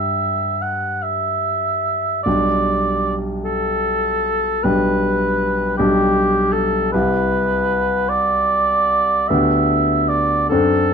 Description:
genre	classical, romantic duo for oboe and grand piano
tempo	48-53 BPM (dotted quarters)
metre	12/8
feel	rubato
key	G major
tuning	A4 = 440 Hz
part	mellow oboe	melody	0.0-10.9 s	G4 to F#5	-18 LUFS	right 1 dB	none
part	clear grand piano	accompaniment	0.0-10.9 s	B1 to A4	-20 LUFS	equal	none
room	light reverb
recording	dark, warm production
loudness	-16 LUFS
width	side -6 dB against mid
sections	0.0-10.9 A section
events	none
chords	0.0 G5; 2.3 G/B; 6.9 Cmaj7; 9.3 G/D

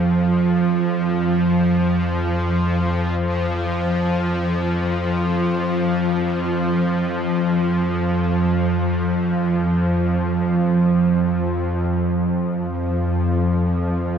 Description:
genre	ambient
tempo	free time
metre	none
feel	none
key	unclear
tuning	A4 = 440 Hz
part	bowed-like drone	solo	0.0-14.2 s	F2 to F3	-18 LUFS	right 1 dB	built-in reverb, tape echo
room	wet cathedral reverb, RT60 5.8 s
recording	worn, warbling old tape, cassette tape, warbly pitch drift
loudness	-18 LUFS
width	side -7 dB against mid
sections	0.0-11.9 A section; 11.9-14.2 B section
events	none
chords	none

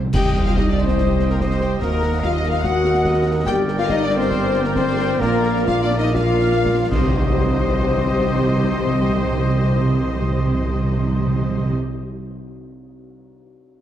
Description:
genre	cinematic, heroic adventure film score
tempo	113-146 BPM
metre	4/4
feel	straight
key	C minor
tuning	A4 = 440 Hz
part	clear symphonic double bass section	bass	0.0-11.8 s	G1 to Eb2	-26 LUFS	right 2 dB	none
part	mellow tuba	bass	0.0-11.8 s	G1 to Eb2	-26 LUFS	right 2 dB	none
part	rich symphonic cello section	bass	0.0-11.8 s	C2 to C3	-27 LUFS	right 3 dB	none
part	timpani	percussion	0.0-0.7, 6.9-11.8 s	C3	-24 LUFS	right 1 dB	none
part	clear symphonic violin section	melody	0.1-11.8 s	Bb4 to G5	-30 LUFS	left 5 dB	none
part	clear cor anglais	second line	0.1-11.8 s	D5 to Eb5	-31 LUFS	right 1 dB	none
part	clear symphonic violin section	second line	0.1-11.8 s	Bb4 to G5	-30 LUFS	left 6 dB	none
part	mellow French horn section	sustained chords	0.1-11.8 s	Bb3 to G4	-23 LUFS	left 2 dB	none
part	clash cymbals, concert bass drum and tam-tam	percussion	0.1-0.9, 6.9-9.2 s	none	-27 LUFS	equal	none
part	bright concert flute	second line	0.2-11.7 s	Bb4 to C6	-30 LUFS	left 2 dB	none
part	dark clarinet	second line	0.2-11.8 s	G4 to Bb4	-30 LUFS	equal	none
part	rich symphonic viola section	accompaniment	0.2-11.8 s	F4 to G5	-31 LUFS	equal	none
part	concert snare drum, clash cymbals and concert bass drum	drums	0.2-7.2 s	none	-29 LUFS	equal	none
room	moderate scoring stage reverb, RT60 1.9 s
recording	dark, warm production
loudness	-16 LUFS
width	side -10 dB against mid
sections	0.2-7.2 A section; 7.2-11.4 B section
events	timpani fill 0.0; band accent 0.2-0.6, 7.2-7.7; slowing down 2.6-7.2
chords	0.2 Cm; 1.8 Ebm; 3.5 Gm; 5.2 Bb; 6.9 Cm

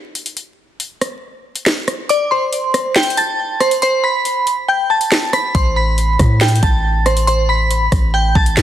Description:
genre	hip hop, drill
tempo	139 BPM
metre	4/4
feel	half-time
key	A minor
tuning	A4 = 440 Hz
part	drill drum kit	drums	0.2-8.6 s	handclaps, hi-hat, kick drum, rim click, snare drum	-17 LUFS	equal	none
part	glassy synth bell	melody	2.1-8.6 s	C5 to B6	-16 LUFS	equal	chorus, phaser, low-pass filter, digital delay
part	hard-hitting 808-style bass	bass	5.5-8.6 s	A1 to A2	-16 LUFS	equal	none
room	light reverb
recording	dense, heavily limited modern master, vinyl crackle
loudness	-13 LUFS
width	side -11 dB against mid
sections	0.0-8.6 A section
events	break 0.0-5.5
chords	0.0 N.C.; 2.1 Amadd11/C; 3.8 C5; 5.5 Amadd9

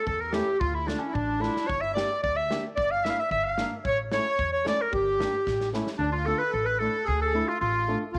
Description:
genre	klezmer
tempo	111 BPM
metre	2/4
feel	straight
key	G dorian sharp4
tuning	A4 = 440 Hz
part	bright clarinet	melody	0.0-8.2 s	C#4 to F5	-29 LUFS	equal	none
part	accordion	second line	0.0-8.2 s	D4 to F5	-35 LUFS	equal	light tremolo tuning
part	upright bass	bass	0.1-8.2 s	G1 to E2	-36 LUFS	equal	none
part	loose indie drum kit	drums	0.1-6.0 s	kick drum, snare drum	-39 LUFS	equal	none
part	flamenco guitar	accompaniment	0.3-8.0 s	A3 to Bb4	-36 LUFS	equal	none
room	light reverb, small room ambience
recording	none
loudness	-27 LUFS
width	mono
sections	0.0-6.0 A section; 6.0-8.2 B section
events	drum fill 1.4, 5.5-6.0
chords	0.0 A; 0.6 Dm; 1.7 Gm; 3.8 A; 4.9 Gm; 5.5 A7; 6.0 Dm

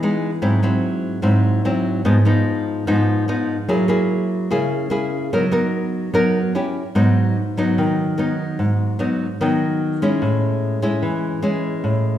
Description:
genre	bossa nova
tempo	147 BPM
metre	4/4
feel	straight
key	G# minor, G# phrygian from 6.9 s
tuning	A4 = 440 Hz
part	nylon-string guitar	solo	0.0-12.2 s	G#2 to A#4	-17 LUFS	equal	none
room	wet recital hall reverb, RT60 1.4 s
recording	recorded in a church or concert hall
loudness	-17 LUFS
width	side -11 dB against mid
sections	0.0-6.9 A section; 6.9-12.2 B section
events	none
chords	0.4 G#aug7; 2.1 G#m6; 3.7 F#9; 5.3 Bmaj7/F#; 6.5 C#dim; 6.9 G#m7; 10.2 Amaj7

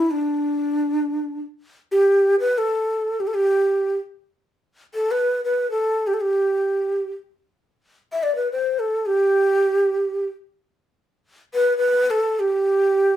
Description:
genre	Persian modal ensemble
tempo	free time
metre	none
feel	none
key	G dastgah mahur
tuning	A4 = 440 Hz
part	breathy ney	solo	0.0-13.2 s	D4 to E5	-18 LUFS	equal	none
room	moderate studio reverb, RT60 0.5 s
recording	band playing live in one room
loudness	-19 LUFS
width	side -12 dB against mid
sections	0.0-13.2 A section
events	none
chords	none

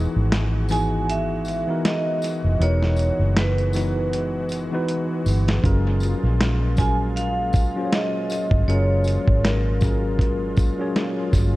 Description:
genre	lo-fi hip hop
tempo	79 BPM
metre	4/4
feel	swing 57% on 16ths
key	F# major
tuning	A4 = 445 Hz
part	mellow tine electric piano	accompaniment	0.0-11.6 s	E3 to C#5	-26 LUFS	left 1 dB	overdrive, medium stereo tremolo, cassette tape, low-pass filter, dub echo
part	pipe organ, strings celeste	sustained chords	0.0-11.6 s	A#2 to F#4	-34 LUFS	left 2 dB	low-pass filter
part	vintage muted fingered electric bass	bass	0.0-11.6 s	E1 to A#1	-22 LUFS	equal	none
part	dusty soul sampler-style drum kit	drums	0.3-11.5 s	hi-hat, kick drum, snare drum	-22 LUFS	equal	none
part	vibraphone with hard mallets	melody	0.7-11.3 s	A#4 to G#5	-27 LUFS	right 2 dB	low-pass filter, dub echo
part	tambourine	percussion	0.7-11.5 s	none	-43 LUFS	left 3 dB	none
room	little or no reverb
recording	echo-heavy mix, cassette tape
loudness	-19 LUFS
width	side -18 dB against mid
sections	0.0-11.6 A section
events	break 0.0-5.6; drum fill 4.9-5.6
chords	0.0 Emaj9; 5.6 F#maj9

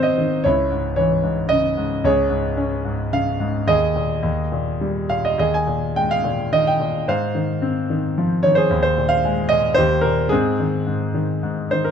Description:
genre	classical, lyrical solo piano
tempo	103-116 BPM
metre	3/4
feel	rubato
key	Ab major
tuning	A4 = 440 Hz
part	clear grand piano	solo	0.0-11.9 s	Db2 to Ab5	-17 LUFS	equal	none
room	light reverb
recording	dark, warm production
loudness	-17 LUFS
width	side -7 dB against mid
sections	0.0-11.9 A section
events	none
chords	0.5 Dbmadd9; 2.0 Db; 3.7 Ebsus4; 4.2 Eb; 7.1 Ab6; 8.7 Ebsus4; 9.8 Eb; 10.3 Ab

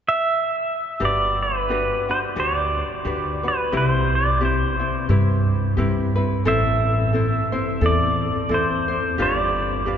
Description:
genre	Hawaiian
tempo	88 BPM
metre	4/4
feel	swing 57% on 8ths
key	G major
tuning	A4 = 440 Hz
part	pedal steel guitar	melody	0.1-10.0 s	B4 to E5	-22 LUFS	right 1 dB	none
part	ukulele	accompaniment	1.0-10.0 s	C4 to C5	-25 LUFS	left 2 dB	none
part	upright bass	bass	1.0-10.0 s	G1 to G2	-22 LUFS	equal	none
room	wet cathedral reverb, RT60 6.2 s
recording	recorded in a church or concert hall, nothing above 7.9 kHz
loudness	-19 LUFS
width	side -8 dB against mid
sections	0.0-1.0 A section; 1.0-10.0 B section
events	none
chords	0.0 N.C.; 1.0 Gmaj7; 3.7 Cmaj7; 6.5 Am; 9.2 G7

